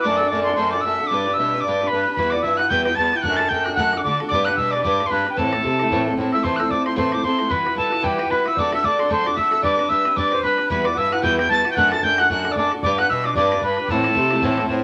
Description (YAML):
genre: celtic folk, Celtic reel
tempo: 225 BPM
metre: 4/4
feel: swing 58% on 8ths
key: A dorian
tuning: A4 = 439 Hz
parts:
  - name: wooden whistle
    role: melody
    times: 0.0-14.7 s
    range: G5 to A6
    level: -23 LUFS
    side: equal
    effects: none
  - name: accordion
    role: second line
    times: 0.0-14.7 s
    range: G4 to A5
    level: -26 LUFS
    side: equal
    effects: none
  - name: picked steel-string acoustic guitar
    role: accompaniment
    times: 0.0-14.8 s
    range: A2 to C5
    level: -26 LUFS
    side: equal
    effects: none
  - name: clear bass clarinet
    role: bass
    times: 0.0-6.3, 10.7-14.8 s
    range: E2 to D3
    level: -30 LUFS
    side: equal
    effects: none
  - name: bodhran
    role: percussion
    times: 2.2-14.8 s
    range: none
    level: -35 LUFS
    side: equal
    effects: none
room: moderate studio reverb, RT60 1.0 s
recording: nothing above 11.0 kHz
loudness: -20 LUFS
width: mono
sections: 0.0-6.4 A section; 6.4-14.8 A section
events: none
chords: 0.0 D/F#; 1.1 G; 2.2 Emadd9; 3.2 D/F#; 4.3 G; 5.4 Am; 7.5 Emadd9; 8.6 D/F#; 9.6 G; 10.7 Emadd9; 11.8 D/F#; 12.8 G; 13.9 Am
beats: | 0.04 0.31 0.57 0.84 | 1.11 1.37 1.64 1.91 | 2.17 2.44 2.71 2.97 | 3.24 3.51 3.77 4.04 | 4.31 4.57 4.84 5.11 | 5.37 5.64 5.91 6.17 | 6.44 6.70 6.97 7.24 | 7.50 7.77 8.03 8.30 | 8.57 8.83 9.10 9.37 | 9.63 9.90 10.16 10.43 | 10.70 10.96 11.23 11.50 | 11.76 12.03 12.29 12.56 | 12.83 13.09 13.36 13.62 | 13.89 14.16 14.42 14.69